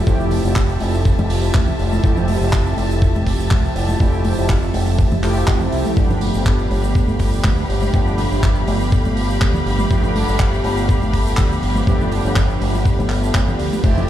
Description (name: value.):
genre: nu-disco, nu disco.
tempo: 122 BPM.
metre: 4/4.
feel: swing 54% on 16ths.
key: unclear.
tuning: A4 = 440 Hz.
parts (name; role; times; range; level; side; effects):
mellow synth brass; accompaniment; 0.0-14.1 s; F3 to G4; -21 LUFS; right 1 dB; chorus, tape echo.
warm symphonic string section; sustained chords; 0.0-14.1 s; F3 to B5; -28 LUFS; left 1 dB; sidechain pumping.
fingered electric bass with an envelope filter; bass; 0.1-14.1 s; F1 to D2; -20 LUFS; equal; none.
electronic kick drum; drums; 0.1-13.9 s; none; -16 LUFS; equal; none.
tube shaker and congas; percussion; 0.1-14.1 s; none; -27 LUFS; equal; none.
tight funk drum kit; drums; 0.3-13.9 s; crash cymbal, handclaps, hi-hat; -28 LUFS; right 1 dB; none.
swell; sound effects; 13.4-13.8 s; none; -39 LUFS; left 1 dB; none.
room: small room ambience.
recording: played on a big sound system in a bare room, large studio reverb.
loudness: -15 LUFS.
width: side -12 dB against mid.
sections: 0.0-14.1 A section.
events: none.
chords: 0.0 Fmaj7; 6.0 G7.